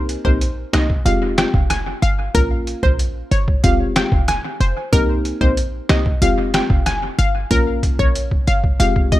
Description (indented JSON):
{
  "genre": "dancehall",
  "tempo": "93 BPM",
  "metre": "4/4",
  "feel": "straight",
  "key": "unclear",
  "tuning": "A4 = 440 Hz",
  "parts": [
    { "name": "deep mellow chord stab", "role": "accompaniment", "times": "0.0-9.2 s", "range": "Ab3 to Bb4", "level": "-23 LUFS", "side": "left 2 dB", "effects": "chorus, analog delay" },
    { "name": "short 808-style bass", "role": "bass", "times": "0.0-9.2 s", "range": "F1 to C2", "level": "-20 LUFS", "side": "equal", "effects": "none" },
    { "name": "trip hop sampler-style drum kit", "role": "drums", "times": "0.1-9.2 s", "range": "hi-hat, kick drum, rim click, snare drum", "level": "-19 LUFS", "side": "equal", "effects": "none" },
    { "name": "analog pluck", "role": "melody", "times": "0.2-9.2 s", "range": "Bb4 to Ab5", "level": "-22 LUFS", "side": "left 1 dB", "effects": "chorus, analog delay" }
  ],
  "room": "little or no reverb",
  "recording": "echo-heavy mix",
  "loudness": "-15 LUFS",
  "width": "side -15 dB against mid",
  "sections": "0.0-9.2 A section",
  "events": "drum fill 7.5-9.2",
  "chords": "0.0 Cm7; 1.1 Fmadd9; 2.3 Bbm; 3.6 Fmadd9; 4.9 Cm7; 6.2 Fmadd9; 7.5 Bbm"
}